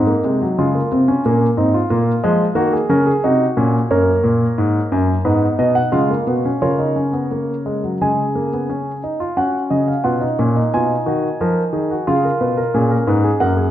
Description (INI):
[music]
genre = classical, baroque-style 4-part fugue for grand piano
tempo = 90 BPM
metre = 4/4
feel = straight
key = F# major from 3.9 s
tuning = A4 = 440 Hz
[part]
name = warm concert grand piano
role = solo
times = 0.0-13.7 s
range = F#2 to G#5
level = -15 LUFS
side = equal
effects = none
[sound]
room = moderate recital hall reverb, RT60 1.4 s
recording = dark, warm production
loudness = -15 LUFS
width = side -12 dB against mid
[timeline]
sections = 0.0-9.4 A section; 9.4-13.7 B section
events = none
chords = 0.0 Fm7/Ab; 1.2 Bbm; 2.6 Ebm7; 3.9 F#add9; 5.2 G#m; 6.6 C#5; 8.0 C#; 9.4 F#/C#; 10.7 G#m7/B; 12.1 C#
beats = 0.57 | 1.24 1.90 2.56 3.23 | 3.90 4.57 5.24 5.92 | 6.61 7.31 8.01 8.70 | 9.38 10.06 10.73 11.40 | 12.07 12.74 13.40